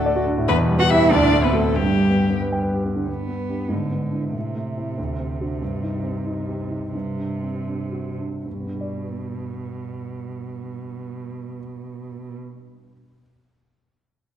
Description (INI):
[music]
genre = quick classical-period movement for piano trio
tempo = 73-97 BPM (dotted quarters)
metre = 6/8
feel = rubato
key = G major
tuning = A4 = 441 Hz
[part]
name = clear violin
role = melody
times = 0.0-2.4 s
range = G4 to F#5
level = -23 LUFS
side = left 7 dB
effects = none
[part]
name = rich cello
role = second line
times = 0.0-12.3 s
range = B2 to F#4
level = -26 LUFS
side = right 3 dB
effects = none
[part]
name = warm grand piano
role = accompaniment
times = 0.0-13.2 s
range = D2 to G5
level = -23 LUFS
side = equal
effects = none
[sound]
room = wet recital hall reverb, RT60 1.6 s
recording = dark, warm production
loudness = -20 LUFS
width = side -10 dB against mid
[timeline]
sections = 0.0-3.1 A section; 3.1-8.5 B section; 8.5-11.6 C section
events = slowing down 5.0-8.5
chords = 0.5 Em; 1.1 D7; 1.8 G; 3.7 E7/G#; 4.3 Am; 5.0 D7; 5.6 Cm/G; 6.9 D7/G; 8.5 G